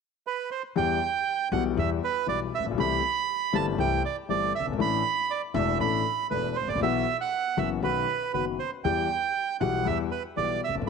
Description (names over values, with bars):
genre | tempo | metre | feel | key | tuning
tango | 119 BPM | 4/4 | rubato | E minor | A4 = 441 Hz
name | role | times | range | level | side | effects
bandoneon | melody | 0.3-10.9 s | B4 to B5 | -27 LUFS | right 9 dB | none
warm concert grand piano | accompaniment | 0.8-10.9 s | E1 to A4 | -29 LUFS | left 10 dB | none
upright bass | bass | 0.8-10.9 s | E1 to E2 | -34 LUFS | right 1 dB | none
room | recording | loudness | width
moderate plate reverb, RT60 2.8 s | 1960s-style stereo with parts hard left and right | -25 LUFS | side -5 dB against mid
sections
0.8-10.9 A section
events
none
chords
0.0 N.C.; 0.8 Em; 2.8 C6; 4.8 Asus4; 6.8 Bsus4; 7.8 B; 8.8 Em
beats
0.25 | 0.76 1.27 1.77 2.28 | 2.78 3.29 3.79 4.29 | 4.79 5.30 5.80 6.30 | 6.81 7.32 7.83 8.34 | 8.85 9.36 9.87 10.37 | 10.88